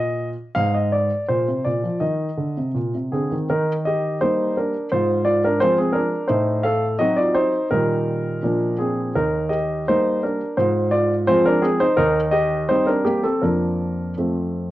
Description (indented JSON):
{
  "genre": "classical-period piano sonatina",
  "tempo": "80-88 BPM",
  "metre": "2/4",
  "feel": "rubato",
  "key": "Eb major",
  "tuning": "A4 = 440 Hz",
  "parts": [
    { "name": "warm grand piano", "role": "solo", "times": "0.0-14.7 s", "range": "Eb2 to F5", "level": "-18 LUFS", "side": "equal", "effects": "none" }
  ],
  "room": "light reverb",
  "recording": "worn, warbling old tape, cassette tape, warbly pitch drift",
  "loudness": "-18 LUFS",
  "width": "side -15 dB against mid",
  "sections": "0.0-3.5 A section; 3.5-14.7 B section",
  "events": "none",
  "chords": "0.0 Eb5; 0.6 N.C.; 1.3 Bb; 2.0 Eb5; 3.5 Eb; 4.9 Fm/Ab; 6.3 Adim7; 7.7 Eb/Bb; 8.4 Bb; 9.2 Eb; 10.6 Fm/Ab; 12.0 Cm7/Eb; 13.4 Bb/F; 14.2 F",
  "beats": "| 0.58 1.30 | 2.03 2.77 | 3.51 4.23 | 4.93 5.61 | 6.30 7.00 | 7.72 8.44 | 9.17 9.89 | 10.60 11.30 | 12.00 12.71 | 13.44 14.19"
}